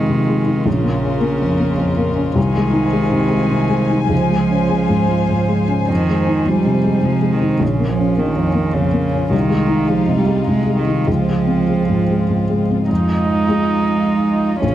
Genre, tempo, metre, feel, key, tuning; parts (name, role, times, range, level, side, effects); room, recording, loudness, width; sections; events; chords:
neoclassical piano and strings; 104 BPM; 3/4; rubato; F minor; A4 = 442 Hz
rich cello; second line; 0.0-14.7 s; Db3 to Ab3; -19 LUFS; right 5 dB
felt-muted upright piano; accompaniment; 0.0-14.7 s; Bb1 to F4; -17 LUFS; left 2 dB
warm chamber string section; sustained chords; 0.0-14.7 s; Ab3 to Ab5; -24 LUFS; left 2 dB
warm viola; accompaniment; 12.9-14.7 s; Db4 to Eb4; -21 LUFS; right 2 dB
moderate booth ambience, RT60 0.3 s; dark, warm production; -14 LUFS; side -12 dB against mid
0.0-12.9 A section; 12.9-14.7 A section
0.0 Fm7; 0.7 Bbm; 2.4 Fm7/C; 4.1 Dbmaj7; 5.9 Fm7; 7.6 Bbm; 9.3 Fm7/C; 11.1 Dbmaj7; 12.9 Fm7